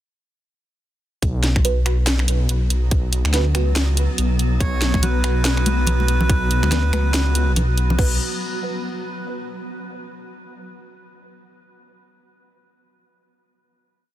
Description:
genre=deep dubstep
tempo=142 BPM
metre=4/4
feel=swing 59% on 16ths, half-time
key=unclear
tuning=A4 = 440 Hz
part: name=granular cloud pad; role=sustained chords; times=2.6-8.2 s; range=F#3 to F#4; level=-29 LUFS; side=equal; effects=built-in reverb
part: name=dark detuned saw bass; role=bass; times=1.2-8.2 s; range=B1 to D2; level=-18 LUFS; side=equal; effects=none
part: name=electronic kick drum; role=drums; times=1.2-8.1 s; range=none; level=-19 LUFS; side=equal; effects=overdrive
part: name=garage drum kit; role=drums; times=1.2-8.1 s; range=crash cymbal, finger snaps, handclaps, hi-hat, snare drum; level=-25 LUFS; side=equal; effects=overdrive
part: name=filtered dub chord stab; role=stabs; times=1.6-8.2 s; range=B3 to B4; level=-31 LUFS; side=right 3 dB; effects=phaser, wide subtle chorus, dub echo
part: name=melodica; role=melody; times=4.6-7.5 s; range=B4 to C#5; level=-28 LUFS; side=right 2 dB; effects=dub echo
part: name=congas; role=percussion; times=4.9-8.0 s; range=none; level=-27 LUFS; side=left 2 dB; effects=none
room=little or no reverb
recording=dense, heavily limited modern master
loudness=-17 LUFS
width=side -13 dB against mid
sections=1.2-8.0 drop; 8.0-9.7 final chord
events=drop 1.2-8.0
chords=1.2 B5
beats=| 1.23 1.65 2.07 2.49 | 2.92 3.34 3.76 4.18 | 4.61 5.03 5.45 5.87 | 6.29 6.72 7.14 7.56 | 7.99

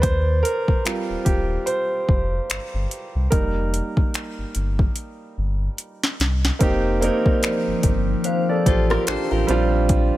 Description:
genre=contemporary R&B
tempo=73 BPM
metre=4/4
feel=swing 58% on 16ths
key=unclear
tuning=A4 = 437 Hz
part: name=warm concert grand piano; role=accompaniment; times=0.0-10.2 s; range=G3 to F5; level=-23 LUFS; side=right 2 dB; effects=none
part: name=sub bass with octave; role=bass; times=0.0-10.1 s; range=Eb1 to Eb2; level=-23 LUFS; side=equal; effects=none
part: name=smooth R&B drum kit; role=drums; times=0.0-10.1 s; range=finger snaps, hi-hat, kick drum, rim click, snare drum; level=-21 LUFS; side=equal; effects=overdrive
part: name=deep dark ambient pad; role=sustained chords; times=7.2-10.2 s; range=F3 to Bb4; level=-27 LUFS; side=left 2 dB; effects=chorus, built-in reverb, phaser, sidechain pumping
part: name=synth chime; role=texture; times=7.0-9.9 s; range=C5 to D5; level=-34 LUFS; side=left 4 dB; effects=none
part: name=fingerpicked acoustic archtop guitar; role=arpeggios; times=8.7-9.7 s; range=F4 to C5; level=-29 LUFS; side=left 7 dB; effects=digital delay
room=digital ambience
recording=none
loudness=-19 LUFS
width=side -15 dB against mid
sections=0.0-6.6 A section; 6.6-10.2 B section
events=grand piano solo 0.0-6.6; drum fill 5.0-6.6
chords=0.0 Eb69; 3.3 F7sus4; 9.5 Bb6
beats=| 0.03 0.85 1.68 2.50 | 3.32 4.14 4.96 5.79 | 6.61 7.43 8.25 9.07 | 9.89

